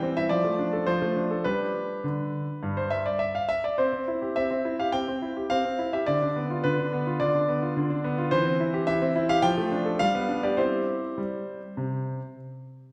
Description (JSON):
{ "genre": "classical-period piano sonatina", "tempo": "105 BPM", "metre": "4/4", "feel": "rubato", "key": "C major", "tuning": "A4 = 441 Hz", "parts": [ { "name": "bright concert grand piano", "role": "solo", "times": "0.0-12.4 s", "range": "G2 to G5", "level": "-27 LUFS", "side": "equal", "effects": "none" } ], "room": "wet recital hall reverb, RT60 1.7 s", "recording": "recorded in a church or concert hall", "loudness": "-27 LUFS", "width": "mono", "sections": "0.0-12.9 A section", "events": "none", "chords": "0.3 Dm/F; 1.4 G; 3.8 C; 6.1 Bdim/D; 8.3 C/E; 9.4 Dm/F; 10.0 G7; 10.6 C", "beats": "0.30 0.87 | 1.45 2.03 2.62 3.20 | 3.78 4.36 4.93 5.50 | 6.07 6.64 7.20 7.76 | 8.32 8.88 9.44 10.00 | 10.59 11.18 11.78" }